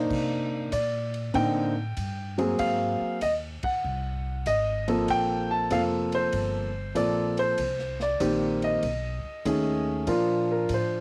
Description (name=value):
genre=jazz piano trio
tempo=96 BPM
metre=4/4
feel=swing 67% on 8ths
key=unclear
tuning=A4 = 439 Hz
part: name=warm concert grand piano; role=melody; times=0.0-11.0 s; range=D3 to A5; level=-28 LUFS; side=equal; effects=cassette tape
part: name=upright bass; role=bass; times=0.0-11.0 s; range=F1 to C3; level=-36 LUFS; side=equal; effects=none
part: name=swinging big-band drum kit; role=drums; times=0.1-10.9 s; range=crash cymbal, hi-hat, kick drum, ride cymbal, snare drum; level=-43 LUFS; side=equal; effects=cassette tape
room=light reverb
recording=home recording on cassette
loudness=-27 LUFS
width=mono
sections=0.0-10.1 A section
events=band accent 3.5-3.8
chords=0.1 Cm9; 2.6 Ab9; 5.1 Gm11; 7.6 Cm7; 8.8 B13; 10.1 Bbmaj7